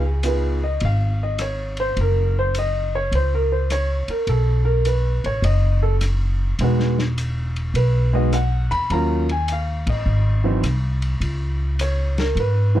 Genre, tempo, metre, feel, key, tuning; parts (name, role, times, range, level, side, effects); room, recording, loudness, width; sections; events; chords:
jazz piano trio; 104 BPM; 4/4; swing 67% on 8ths; C# minor; A4 = 436 Hz
warm grand piano; melody; 0.0-12.8 s; E3 to B5; -23 LUFS; right 1 dB
upright bass; bass; 0.0-12.8 s; E1 to G#2; -20 LUFS; equal
vintage drum kit; drums; 0.2-12.5 s; hi-hat, kick drum, ride cymbal, rim click, snare drum; -32 LUFS; left 2 dB
little or no reverb; dark, warm production; -18 LUFS; side -13 dB against mid
0.0-12.8 A section
band accent 9.8
0.0 C#7; 2.0 F#5; 4.3 B5; 6.6 Emaj9; 8.9 D#m9; 10.1 G#; 11.2 C#7(no3)